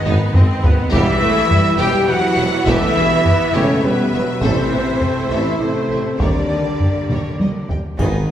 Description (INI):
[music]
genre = cinematic, epic orchestral film score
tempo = 103 BPM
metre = 3/4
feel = straight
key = unclear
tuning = A4 = 440 Hz
[part]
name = bright large flute ensemble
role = second line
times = 0.0-7.7 s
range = B4 to G5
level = -27 LUFS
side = equal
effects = none
[part]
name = warm symphonic violin section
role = second line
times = 0.0-8.3 s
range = B4 to G5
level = -26 LUFS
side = equal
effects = none
[part]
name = warm symphonic viola section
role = accompaniment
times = 0.0-8.3 s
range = E3 to D#4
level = -24 LUFS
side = right 1 dB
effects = none
[part]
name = mellow French horn section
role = sustained chords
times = 0.0-8.3 s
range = B3 to G4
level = -22 LUFS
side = left 2 dB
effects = none
[part]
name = rich symphonic string section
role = sustained chords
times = 0.0-8.0 s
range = E3 to E5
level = -27 LUFS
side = equal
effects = none
[part]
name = dark trumpet section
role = stabs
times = 0.0-7.7 s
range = B4 to G5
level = -24 LUFS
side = right 1 dB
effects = none
[part]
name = rich studio double bass section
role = bass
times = 0.0-8.3 s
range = E1 to Eb2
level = -26 LUFS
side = right 2 dB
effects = none
[part]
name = warm symphonic cello section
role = bass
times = 0.0-8.3 s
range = B2 to G3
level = -25 LUFS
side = right 2 dB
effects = none
[part]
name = warm symphonic violin section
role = melody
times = 0.1-8.3 s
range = Eb4 to G#5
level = -29 LUFS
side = left 4 dB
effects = none
[part]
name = warm tuba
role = bass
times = 0.1-8.3 s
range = E1 to Eb2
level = -25 LUFS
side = right 2 dB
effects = none
[part]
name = taiko ensemble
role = drums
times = 0.1-8.3 s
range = none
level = -19 LUFS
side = equal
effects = none
[part]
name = mellow trombone section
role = sustained chords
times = 0.9-6.4 s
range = E3 to B3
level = -30 LUFS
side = right 2 dB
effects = none
[part]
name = timpani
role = percussion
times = 8.0-8.3 s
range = none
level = barely audible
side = none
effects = none
[part]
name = triangle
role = percussion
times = 8.0-8.3 s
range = none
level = -38 LUFS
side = left 1 dB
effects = none
[part]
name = impact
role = sound effects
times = 8.0-8.3 s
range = none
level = -26 LUFS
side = equal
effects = none
[sound]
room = wet recital hall reverb, RT60 1.5 s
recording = recorded in a church or concert hall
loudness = -14 LUFS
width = side -10 dB against mid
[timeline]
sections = 0.0-8.0 A section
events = drum fill 0.1-0.9, 7.1-8.0; band accent 8.0-8.3; impact 8.0-8.3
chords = 0.0 Abm; 0.9 Em; 4.4 Am; 6.2 Eb7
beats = 0.35 | 0.93 1.51 2.09 | 2.67 3.25 3.84 | 4.42 5.01 5.60 | 6.20 6.79 7.39 | 7.99